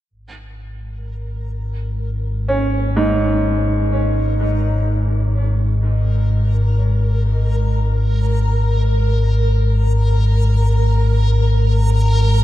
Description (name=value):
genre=dark ambient drone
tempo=free time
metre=none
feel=none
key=unclear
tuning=A4 = 440 Hz
part: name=deep rumbling drone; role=drone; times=0.6-12.4 s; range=G#1 to G#2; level=-16 LUFS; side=equal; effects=built-in reverb, wide subtle chorus
part: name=backwards swelling texture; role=texture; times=1.0-12.4 s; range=A#4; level=-28 LUFS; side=equal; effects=built-in reverb
part: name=bright grand piano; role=arpeggios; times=2.5-12.4 s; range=G#2 to C#4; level=-22 LUFS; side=right 1 dB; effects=diffuse ambient delay
room=wet cathedral reverb, RT60 5.1 s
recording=none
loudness=-15 LUFS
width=side -14 dB against mid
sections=0.1-12.4 A section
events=fade-in on synth texture 0.1-12.4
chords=0.1 G#sus24